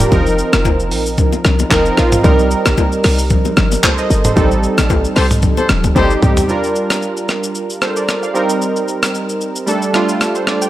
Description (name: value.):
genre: afrobeats.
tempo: 113 BPM.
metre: 4/4.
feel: swing 55% on 16ths.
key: G minor.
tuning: A4 = 437 Hz.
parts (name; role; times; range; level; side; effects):
warm analog keys; accompaniment; 0.0-10.7 s; F3 to G5; -16 LUFS; right 2 dB; chorus.
short 808-style bass; bass; 0.0-6.4 s; Eb1 to C2; -15 LUFS; equal; none.
breakbeat sampler-style drum kit; drums; 0.0-10.7 s; handclaps, hi-hat, kick drum, rim click, shaker, toms; -16 LUFS; equal; none.
congas and bongos; percussion; 0.1-6.1 s; none; -22 LUFS; left 7 dB; none.
clear horn section; second line; 5.2-6.1 s; G4 to C5; -20 LUFS; left 3 dB; none.
room: little or no reverb.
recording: none.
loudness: -12 LUFS.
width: side -14 dB against mid.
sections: 0.0-6.5 A section; 6.5-10.7 B section.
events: band accent 4.4-6.5; drum fill 6.0-6.5.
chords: 0.1 F7sus4; 2.2 Cm7; 4.4 Am7b5; 6.5 Gm7; 8.3 Cm7; 9.7 Dsus4.